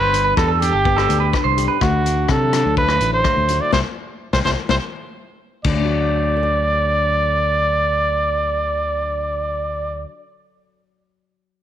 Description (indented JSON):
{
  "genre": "highlife guitar band",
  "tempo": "125 BPM",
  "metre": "4/4",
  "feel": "straight",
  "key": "D mixolydian",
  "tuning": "A4 = 443 Hz",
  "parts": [
    { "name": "clear trumpet", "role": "melody", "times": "0.0-10.0 s", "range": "F#4 to D5", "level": "-19 LUFS", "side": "right 2 dB", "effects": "slapback echo" },
    { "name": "flamenco guitar", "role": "accompaniment", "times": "0.0-10.8 s", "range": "G2 to A4", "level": "-26 LUFS", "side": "left 11 dB", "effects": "none" },
    { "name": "clean electric guitar", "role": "arpeggios", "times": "0.0-1.8 s", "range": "G4 to C5", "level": "-21 LUFS", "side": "right 9 dB", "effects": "slapback echo" },
    { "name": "fingered electric bass", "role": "bass", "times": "0.0-10.0 s", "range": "G1 to C3", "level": "-22 LUFS", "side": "equal", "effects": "none" },
    { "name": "vintage drum kit", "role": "drums", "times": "0.1-5.8 s", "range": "crash cymbal, hi-hat, kick drum, rim click, snare drum", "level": "-24 LUFS", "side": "left 3 dB", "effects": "none" }
  ],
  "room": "light reverb",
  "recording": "1960s-style stereo with parts hard left and right",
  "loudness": "-16 LUFS",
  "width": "side -10 dB against mid",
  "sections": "0.0-5.6 A section; 5.6-9.5 B section",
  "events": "band accent 3.7-5.6",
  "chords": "0.0 G; 1.8 D; 3.7 C; 5.6 D"
}